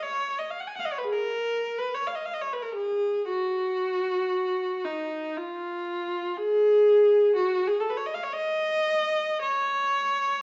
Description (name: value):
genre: classical, free, expressive piece for unaccompanied viola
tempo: 48-62 BPM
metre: 4/4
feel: rubato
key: Db mixolydian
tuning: A4 = 441 Hz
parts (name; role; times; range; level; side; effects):
- rich viola; solo; 0.0-10.4 s; Eb4 to Ab5; -26 LUFS; equal; none
room: wet recital hall reverb, RT60 1.4 s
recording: worn, warbling old tape, cassette tape, vinyl crackle, warbly pitch drift, nothing above 7.9 kHz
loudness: -26 LUFS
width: mono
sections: 0.0-10.4 A section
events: none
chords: none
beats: 0.01 1.12 2.19 | 3.25 4.32 5.35 6.37 | 7.35 8.35 9.43